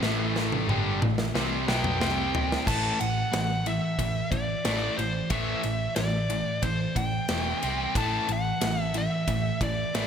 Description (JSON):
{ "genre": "hard rock", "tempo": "91 BPM", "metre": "4/4", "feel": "straight", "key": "A dorian", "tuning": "A4 = 440 Hz", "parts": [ { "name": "overdriven electric guitar", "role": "riff", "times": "0.0-10.1 s", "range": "E2 to C4", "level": "-29 LUFS", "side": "equal", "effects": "none" }, { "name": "hollow-body short-scale picked electric bass", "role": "bass", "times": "0.0-10.1 s", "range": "E1 to C2", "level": "-32 LUFS", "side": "equal", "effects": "none" }, { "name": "big rock drum kit", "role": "drums", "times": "0.0-10.1 s", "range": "crash cymbal, kick drum, ride cymbal, snare drum, toms", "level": "-31 LUFS", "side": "equal", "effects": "gated reverb" }, { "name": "bluesy overdriven lead guitar", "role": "melody", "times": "1.7-10.1 s", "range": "C5 to A5", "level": "-30 LUFS", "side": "equal", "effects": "distortion" } ], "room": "moderate lush hall reverb, RT60 2.9 s", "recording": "bright 1980s-style digital production", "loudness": "-24 LUFS", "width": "side -8 dB against mid", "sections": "0.0-2.7 A section; 2.7-10.1 B section", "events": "drum fill 0.0-2.7", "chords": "0.0 Am; 2.0 C5; 2.7 A5; 7.3 E5; 7.6 C5; 8.0 A5" }